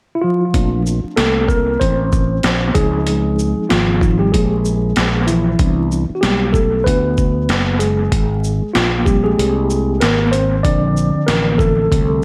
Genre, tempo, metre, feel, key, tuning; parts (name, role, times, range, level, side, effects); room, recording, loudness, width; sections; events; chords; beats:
hip hop, jazz-hop; 95 BPM; 4/4; swing 57% on 16ths; A4 = 445 Hz
mellow tine electric piano; accompaniment; 0.2-12.2 s; D3 to D5; -20 LUFS; equal; analog delay
fretless electric bass; bass; 0.5-12.2 s; Gb1 to D2; -20 LUFS; equal; subtle chorus
boom bap sampler-style drum kit; drums; 0.5-12.1 s; hi-hat, kick drum, shaker, snare drum; -20 LUFS; equal; analog delay
light reverb; echo-heavy mix, vinyl crackle; -16 LUFS; mono
0.5-12.2 A section
tine electric piano solo 0.5-12.2
0.0 N.C.; 0.5 Bbmaj9; 2.8 Dbmaj9; 5.6 Cmaj9; 8.1 Abmaj9; 10.6 Bbmaj9
| 0.54 1.17 1.80 2.44 | 3.07 3.70 4.33 4.96 | 5.59 6.23 6.86 7.49 | 8.12 8.75 9.38 10.02 | 10.65 11.28 11.91